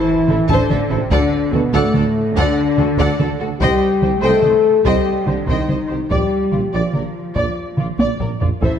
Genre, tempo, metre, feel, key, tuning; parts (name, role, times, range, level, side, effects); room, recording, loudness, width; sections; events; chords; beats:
cinematic, epic orchestral film score; 96 BPM (dotted quarters); 12/8; straight; A4 = 436 Hz
warm symphonic violin section; melody; 0.0-8.8 s; F4 to A5; -29 LUFS; left 2 dB
warm symphonic violin section; second line; 0.0-8.8 s; E4 to Eb5; -26 LUFS; left 1 dB
warm symphonic viola section; accompaniment; 0.0-8.8 s; A4 to D5; -26 LUFS; right 2 dB
mellow French horn section; sustained chords; 0.0-8.8 s; A3 to A4; -18 LUFS; left 5 dB
rich symphonic cello section; bass; 0.0-8.8 s; A2 to A3; -23 LUFS; right 4 dB
mellow tuba; bass; 0.3-8.7 s; A1 to D2; -26 LUFS; right 4 dB
rich symphonic double bass section; bass; 0.3-8.7 s; A1 to D2; -24 LUFS; right 4 dB
taiko ensemble; drums; 0.3-8.8 s; -21 LUFS; equal
moderate scoring stage reverb, RT60 1.9 s; -14 LUFS; side -8 dB against mid
0.0-8.8 A section
drum fill 8.0-8.6
0.0 Am; 1.1 D; 3.6 Cm; 6.1 Bb
0.48 | 1.11 1.73 2.36 2.99 | 3.61 4.23 4.85 5.47 | 6.10 6.73 7.36 7.99 | 8.62